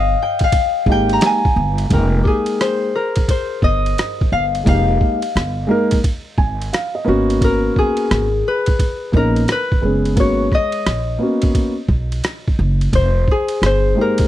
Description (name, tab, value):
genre	hip hop, jazz-hop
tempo	87 BPM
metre	4/4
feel	swing 63% on 16ths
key	F minor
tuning	A4 = 440 Hz
part	concert harp	melody	0.0-14.3 s	G4 to Bb5	-19 LUFS	left 3 dB	none
part	upright bass	bass	0.0-13.9 s	F1 to Cb2	-18 LUFS	right 1 dB	none
part	boom bap sampler-style drum kit	drums	0.4-14.3 s	hi-hat, kick drum, ride cymbal, rim click, snare drum	-19 LUFS	right 1 dB	none
part	dark grand piano	accompaniment	0.9-14.2 s	Ab3 to Ab5	-18 LUFS	equal	none
room	little or no reverb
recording	dry, close 1970s-style studio recording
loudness	-14 LUFS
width	side -13 dB against mid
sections	0.0-1.9 A section; 1.9-14.3 B section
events	harp solo 0.0-1.9; grand piano fill 6.0-7.4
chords	0.0 Fm11; 7.1 Abm11; 12.9 Fm11